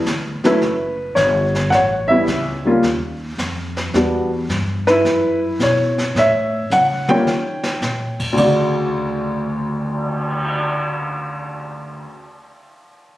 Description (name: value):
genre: jazz piano trio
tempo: 108 BPM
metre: 4/4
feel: swing 68% on 8ths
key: D major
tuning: A4 = 440 Hz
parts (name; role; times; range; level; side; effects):
- warm baby grand piano; melody; 0.0-12.1 s; D2 to G5; -17 LUFS; equal; none
- upright bass; bass; 0.0-12.0 s; F#1 to Eb3; -25 LUFS; equal; none
- vintage brush drum kit; drums; 0.1-10.5 s; brushed snare drum, crash cymbal, cymbal swell, hi-hat, kick drum, snare drum, toms; -25 LUFS; right 1 dB; none
room: moderate studio reverb, RT60 0.8 s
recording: recorded on a phone in the room, studio reverb, compression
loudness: -16 LUFS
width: side -15 dB against mid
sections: 0.0-8.4 A section; 8.4-10.6 B section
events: drum fill 6.7-7.8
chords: 0.0 E7(no3); 0.6 F#5; 1.7 A7; 2.8 Ebsus2; 3.9 Em7; 5.0 F#5; 6.2 A7; 7.3 Eb7; 8.4 Dmaj7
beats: 0.06 0.61 1.17 | 1.72 2.28 2.83 3.38 | 3.94 4.49 5.05 5.60 | 6.16 6.71 7.26 7.82 | 8.37 8.93 9.48 10.03